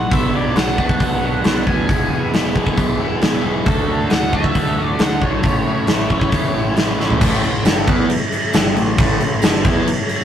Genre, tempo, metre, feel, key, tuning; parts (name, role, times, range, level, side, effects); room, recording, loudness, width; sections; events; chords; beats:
classic rock; 135 BPM; 4/4; straight; A major; A4 = 440 Hz
octave-fuzz lead guitar; melody; 0.0-6.7 s; A4 to G#5; -24 LUFS; equal; distortion
growling picked electric bass; bass; 0.0-9.8 s; E1 to A2; -24 LUFS; equal; overdrive
crunchy overdriven guitar; riff; 0.1-9.9 s; E2 to G#4; -23 LUFS; right 4 dB
raw garage guitar; riff; 0.1-9.9 s; G2 to F#4; -24 LUFS; left 2 dB; overdrive, phaser
huge arena drum kit; drums; 0.1-10.2 s; crash cymbal, hi-hat, kick drum, snare drum, toms; -17 LUFS; equal
bright tonewheel organ; sustained chords; 6.9-10.2 s; A3 to D5; -30 LUFS; equal
raw garage guitar; riff; 7.2-9.9 s; G2 to E4; -28 LUFS; equal
tambourine; percussion; 7.7-9.5 s; -34 LUFS; right 5 dB
moderate small room reverb, RT60 0.5 s; rough rehearsal-room recording; -14 LUFS; side -9 dB against mid
0.0-7.2 A section; 7.2-10.2 B section
drum fill 7.0
0.1 Bm; 1.9 E; 3.7 D; 5.4 A
| 0.11 0.56 1.00 1.45 | 1.89 2.33 2.78 3.22 | 3.67 4.11 4.55 5.00 | 5.44 5.88 6.33 6.77 | 7.21 7.65 8.10 8.54 | 8.98 9.42 9.87